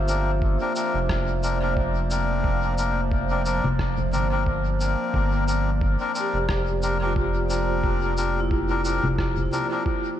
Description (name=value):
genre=ambient dub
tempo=89 BPM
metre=4/4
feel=swing 56% on 16ths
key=G dorian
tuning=A4 = 442 Hz
part: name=warbly tape-like pad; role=sustained chords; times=0.0-10.2 s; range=F3 to D5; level=-29 LUFS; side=equal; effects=chorus, built-in reverb
part: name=vibraphone with medium mallets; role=arpeggios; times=0.0-10.2 s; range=E4 to F5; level=-32 LUFS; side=right 1 dB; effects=dub echo
part: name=round analog bass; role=bass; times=0.0-9.5 s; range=F1 to G1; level=-25 LUFS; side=equal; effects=tube saturation
part: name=melodica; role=stabs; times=0.1-9.8 s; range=C4 to Bb4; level=-27 LUFS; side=left 3 dB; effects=dub echo
part: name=electronic cabasa, rim click and congas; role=drums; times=0.1-9.7 s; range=none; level=-32 LUFS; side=left 2 dB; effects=dub echo
part: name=electronic kick drum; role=drums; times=0.4-10.0 s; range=none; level=-27 LUFS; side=equal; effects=none
room=light reverb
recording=none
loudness=-21 LUFS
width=side -11 dB against mid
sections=0.0-10.2 A section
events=none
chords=0.0 Gm7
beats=0.42 1.10 1.77 | 2.44 3.12 3.79 4.47 | 5.14 5.82 6.49 7.16 | 7.84 8.51 9.19 9.86